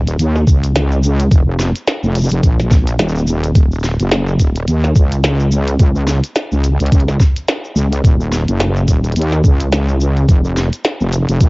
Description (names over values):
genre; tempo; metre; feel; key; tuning
glitch hop; 107 BPM; 4/4; swing 57% on 16ths; Eb minor; A4 = 440 Hz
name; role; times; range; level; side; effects
wobble bass; bass; 0.0-11.5 s; Eb1 to Eb2; -14 LUFS; equal; chorus, tube saturation
glitchy drum kit; drums; 0.1-11.5 s; hi-hat, shaker, snare drum; -20 LUFS; equal; cassette tape
electronic kick drum; drums; 0.5-11.5 s; none; -11 LUFS; equal; cassette tape
room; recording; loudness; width
little or no reverb; home recording on cassette, nothing above 7.6 kHz; -12 LUFS; side -27 dB against mid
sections
0.0-11.5 A section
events
none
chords
none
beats
0.19 0.75 | 1.31 1.87 2.43 3.00 | 3.56 4.12 4.68 5.24 | 5.80 6.36 6.92 7.48 | 8.04 8.60 9.16 9.72 | 10.28 10.85 11.41